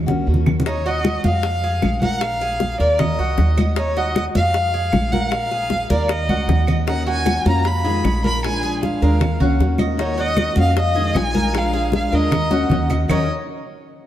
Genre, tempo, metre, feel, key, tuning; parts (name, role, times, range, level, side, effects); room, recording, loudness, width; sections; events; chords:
latin, Cuban son and guajira; 154 BPM; 4/4; straight; Eb minor; A4 = 440 Hz
upright bass; bass; 0.0-13.3 s; Bb1 to F2; -21 LUFS; right 1 dB
picked steel-string acoustic guitar; accompaniment; 0.1-0.7, 6.9-13.3 s; Eb3 to Gb4; -24 LUFS; left 2 dB
bongos; percussion; 0.1-13.2 s; -29 LUFS; left 6 dB
congas; percussion; 0.1-13.2 s; -23 LUFS; equal
claves; percussion; 0.5-13.2 s; -38 LUFS; right 5 dB
warm violin; melody; 0.7-13.3 s; Db5 to Cb6; -22 LUFS; equal
Cuban tres; arpeggios; 0.7-13.3 s; Eb4 to F5; -27 LUFS; right 2 dB
moderate plate reverb, RT60 2.3 s; heard from further back in the room; -16 LUFS; side -12 dB against mid
0.7-13.1 A section
drum fill 0.0-0.7, 5.9-6.9, 12.5-13.1
0.0 Ebm7; 0.7 Ebm; 1.4 Gbmaj9; 2.2 Bb5; 3.0 Ebm; 4.5 Gbmaj9; 5.3 Bb5; 6.1 Ebm7; 7.7 Fm7b5; 8.4 Bb7; 9.2 Ebm7; 10.8 Bb7sus4; 11.5 Bb7; 12.3 Ebm7